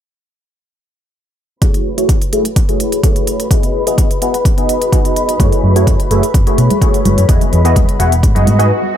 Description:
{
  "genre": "filtered disco house",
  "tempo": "127 BPM",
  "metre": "4/4",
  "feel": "straight",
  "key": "F# dorian",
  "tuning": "A4 = 441 Hz",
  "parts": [
    { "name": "funky polysynth comp", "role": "accompaniment", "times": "1.6-8.7 s", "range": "A3 to F#5", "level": "-16 LUFS", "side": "equal", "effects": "chorus, phaser, sidechain pumping, low-pass filter, tape echo" },
    { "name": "muted studio violin section", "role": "sustained chords", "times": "1.6-8.7 s", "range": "B4 to B5", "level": "-23 LUFS", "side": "left 4 dB", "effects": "vintage 12-bit sampler grit, sidechain pumping, low-pass filter" },
    { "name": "electronic hi-hat", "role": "drums", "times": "1.6-8.7 s", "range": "none", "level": "-24 LUFS", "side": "right 2 dB", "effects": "sidechain pumping on hats, studio reverb" },
    { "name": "electronic kick drum", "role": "drums", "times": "1.6-8.3 s", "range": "none", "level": "-13 LUFS", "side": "equal", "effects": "studio reverb" },
    { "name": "hollow-body short-scale fingered electric bass", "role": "bass", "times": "5.4-8.7 s", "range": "E1 to B2", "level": "-13 LUFS", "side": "equal", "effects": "sidechain pumping, low-pass filter" },
    { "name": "maracas and congas", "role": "percussion", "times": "5.4-8.7 s", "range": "none", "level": "-20 LUFS", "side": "right 2 dB", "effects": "sidechain pumping on perc, low-pass filter on perc, tape echo" },
    { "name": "swell", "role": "sound effects", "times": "8.4-9.0 s", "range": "none", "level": "-20 LUFS", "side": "right 1 dB", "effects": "none" }
  ],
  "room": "light reverb, digital ambience",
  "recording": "echo-heavy mix",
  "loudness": "-10 LUFS",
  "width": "side -10 dB against mid",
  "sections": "1.6-9.0 A section",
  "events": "filter sweep 1.6-9.0; swell 8.4-9.0; break 8.7",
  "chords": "1.6 F#m7; 3.5 Emaj7; 4.5 G#m7; 5.4 F#m7; 7.3 Emaj7; 8.2 G#m7",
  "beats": "| 1.62 2.09 2.56 3.04 | 3.51 3.98 4.45 4.93 | 5.40 5.87 6.34 6.82 | 7.29 7.76 8.23 8.71"
}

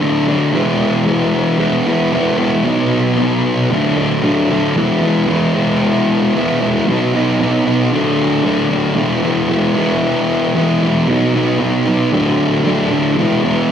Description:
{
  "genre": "rock",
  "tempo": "114 BPM",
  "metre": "4/4",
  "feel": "straight",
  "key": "E major",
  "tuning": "A4 = 440 Hz",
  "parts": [
    { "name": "thick fuzz guitar", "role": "solo", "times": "0.0-13.7 s", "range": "B2 to E4", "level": "-13 LUFS", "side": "equal", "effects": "distortion, slapback echo" }
  ],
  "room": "moderate lush hall reverb, RT60 2.4 s",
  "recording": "live gig heard through the venue's PA, club reverb",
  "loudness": "-13 LUFS",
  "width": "side -8 dB against mid",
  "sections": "0.0-4.8 A section; 4.8-13.7 B section",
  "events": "half time 0.0-4.8",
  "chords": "0.0 D; 0.5 E; 2.7 B; 3.7 D; 4.8 E; 6.9 B; 7.9 D; 9.0 E; 11.1 B; 12.1 D; 13.2 E",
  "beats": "0.02 | 0.55 1.07 1.60 2.13 | 2.66 3.18 3.71 4.24 | 4.76 5.29 5.82 6.34 | 6.87 7.40 7.92 8.45 | 8.98 9.50 10.03 10.56 | 11.08 11.61 12.14 12.66 | 13.19 13.71"
}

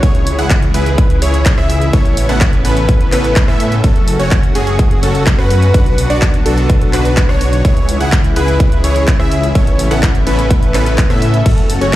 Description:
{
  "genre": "EDM, festival progressive house",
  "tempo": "126 BPM",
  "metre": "4/4",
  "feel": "straight",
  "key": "F# minor",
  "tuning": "A4 = 441 Hz",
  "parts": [
    { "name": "lush unison pad", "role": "sustained chords", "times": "0.0-12.0 s", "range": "C#3 to F#4", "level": "-21 LUFS", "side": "left 1 dB", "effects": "chorus, sidechain pumping" },
    { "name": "wide unison lead", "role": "arpeggios", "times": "0.0-12.0 s", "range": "G#4 to F#5", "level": "-21 LUFS", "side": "equal", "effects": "sidechain pumping, digital delay" },
    { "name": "supersaw stab", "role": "riff", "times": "0.0-12.0 s", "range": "B3 to F#5", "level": "-20 LUFS", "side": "right 1 dB", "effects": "sidechain pumping, digital delay" },
    { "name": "wide detuned saw bass", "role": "bass", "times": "0.0-12.0 s", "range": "F#1 to A2", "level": "-16 LUFS", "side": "equal", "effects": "chorus, sidechain pumping" },
    { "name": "big-room dance drum kit", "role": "drums", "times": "0.0-12.0 s", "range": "crash cymbal, handclaps, hi-hat, ride cymbal, rim click", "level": "-22 LUFS", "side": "equal", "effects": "overdrive" },
    { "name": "electronic kick drum", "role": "drums", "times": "0.0-12.0 s", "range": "none", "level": "-12 LUFS", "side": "equal", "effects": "overdrive" }
  ],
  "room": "light reverb",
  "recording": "played on a big sound system in a bare room, large studio reverb",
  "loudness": "-10 LUFS",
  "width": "side -15 dB against mid",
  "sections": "0.0-12.0 A section",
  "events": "none",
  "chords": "0.0 C#m; 1.9 Aadd9; 3.8 F#m; 5.7 Bm; 7.6 C#m; 9.6 Aadd9; 11.5 F#m",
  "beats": "| 0.03 0.51 0.98 1.46 | 1.93 2.41 2.89 3.36 | 3.84 4.31 4.79 5.27 | 5.74 6.22 6.70 7.17 | 7.65 8.12 8.60 9.08 | 9.55 10.03 10.51 10.98 | 11.46 11.93"
}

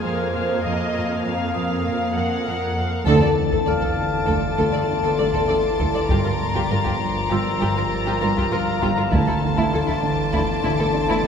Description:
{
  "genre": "cinematic, suspense film score",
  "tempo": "99 BPM",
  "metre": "5/4",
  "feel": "straight",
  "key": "unclear",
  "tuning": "A4 = 441 Hz",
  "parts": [
    { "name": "dark studio violin section", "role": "melody", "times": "0.0-11.3 s", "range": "F5 to Bb5", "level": "-30 LUFS", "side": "left 1 dB", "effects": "none" },
    { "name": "warm studio violin section", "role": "second line", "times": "0.0-11.3 s", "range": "E4 to Gb5", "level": "-28 LUFS", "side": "equal", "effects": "none" },
    { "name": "warm studio viola section", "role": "accompaniment", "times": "0.0-11.2 s", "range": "E4 to Bb4", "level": "-30 LUFS", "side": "equal", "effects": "none" },
    { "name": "glass harmonica", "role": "sustained chords", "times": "0.0-11.3 s", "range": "D4 to Bb5", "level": "-29 LUFS", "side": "left 2 dB", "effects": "none" },
    { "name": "warm studio cello section", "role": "bass", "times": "0.0-11.3 s", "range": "D2 to Bb3", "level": "-30 LUFS", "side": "right 3 dB", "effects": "none" },
    { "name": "warm studio double bass section", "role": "bass", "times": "0.0-11.3 s", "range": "G1 to F2", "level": "-29 LUFS", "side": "right 2 dB", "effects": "none" },
    { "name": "swarming drone", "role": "drone", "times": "0.0-11.3 s", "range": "G1 to F2", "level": "-28 LUFS", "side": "left 1 dB", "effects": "built-in reverb" },
    { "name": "dark chamber violin section", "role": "texture", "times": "0.0-11.3 s", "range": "C6 to A6", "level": "-33 LUFS", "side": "left 3 dB", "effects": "none" },
    { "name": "vibraphone with hard mallets", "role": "texture", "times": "1.5-11.3 s", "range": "F5 to F6", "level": "-32 LUFS", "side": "left 4 dB", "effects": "none" },
    { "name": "dark French horn section", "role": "sustained chords", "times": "3.1-11.3 s", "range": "E3 to Bb4", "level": "-25 LUFS", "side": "left 4 dB", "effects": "none" },
    { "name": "warm studio cello section", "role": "riff", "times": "3.1-11.3 s", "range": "G2 to D4", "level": "-26 LUFS", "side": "right 2 dB", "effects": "none" },
    { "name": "taiko ensemble", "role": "drums", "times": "3.1-11.2 s", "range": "none", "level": "-29 LUFS", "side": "equal", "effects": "none" },
    { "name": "timpani", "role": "percussion", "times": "3.1-3.9, 9.1-10.0 s", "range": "D3", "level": "-28 LUFS", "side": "right 2 dB", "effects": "none" }
  ],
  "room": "wet scoring stage reverb, RT60 2.1 s",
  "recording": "heard from further back in the room",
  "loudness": "-18 LUFS",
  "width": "side -7 dB against mid",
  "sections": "0.0-3.1 A section; 3.1-11.3 B section",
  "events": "band accent 3.1-3.7",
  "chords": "0.0 Bbsus2/F; 3.1 Dsus2; 6.1 Gm7; 9.1 Dsus2",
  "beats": "| 0.04 0.64 1.25 1.85 2.46 | 3.07 3.67 4.28 4.88 5.49 | 6.10 6.70 7.31 7.92 8.52 | 9.13 9.73 10.34 10.95"
}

